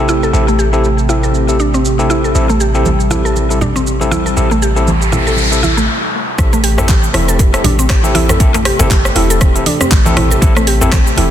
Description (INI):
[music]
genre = afro house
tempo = 119 BPM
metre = 4/4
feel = swing 57% on 16ths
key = A minor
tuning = A4 = 440 Hz
[part]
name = warm analog pad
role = sustained chords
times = 0.0-11.3 s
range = C3 to G4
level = -20 LUFS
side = right 1 dB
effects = chorus, sidechain pumping
[part]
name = overdriven tine electric piano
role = stabs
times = 0.0-11.3 s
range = C4 to A4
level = -18 LUFS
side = left 2 dB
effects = sidechain pumping, ping-pong delay
[part]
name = warm 808-style bass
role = bass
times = 0.0-11.3 s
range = E1 to A1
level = -16 LUFS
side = equal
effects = sidechain pumping
[part]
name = mallet-like synth pluck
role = arpeggios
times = 0.1-11.3 s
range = A3 to A4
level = -18 LUFS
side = equal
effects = chorus, sidechain pumping, ping-pong delay
[part]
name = house drum kit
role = drums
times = 0.1-11.3 s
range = handclaps, hi-hat, rim click, shaker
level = -19 LUFS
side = right 2 dB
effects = low-pass filter on perc, low-pass filter on hats, soft clipping on snare, low-pass filter on snare, low-pass filter on cymbals, low-pass filter on room
[part]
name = congas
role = percussion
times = 2.5-11.3 s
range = none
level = -21 LUFS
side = right 3 dB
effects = none
[part]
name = noise sweep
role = sound effects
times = 4.7-6.4 s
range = none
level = -18 LUFS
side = equal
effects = none
[part]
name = electronic kick drum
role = drums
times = 6.4-11.0 s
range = none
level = -11 LUFS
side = equal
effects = none
[part]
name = djembe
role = percussion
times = 6.8-10.9 s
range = none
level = -22 LUFS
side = left 2 dB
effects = none
[sound]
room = light reverb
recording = dense, heavily limited modern master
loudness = -10 LUFS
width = side -10 dB against mid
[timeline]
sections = 0.0-6.4 A section; 6.4-11.3 B section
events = noise sweep 4.7-6.4; stop 5.9-6.4; drop 6.4-11.3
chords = 0.0 Am7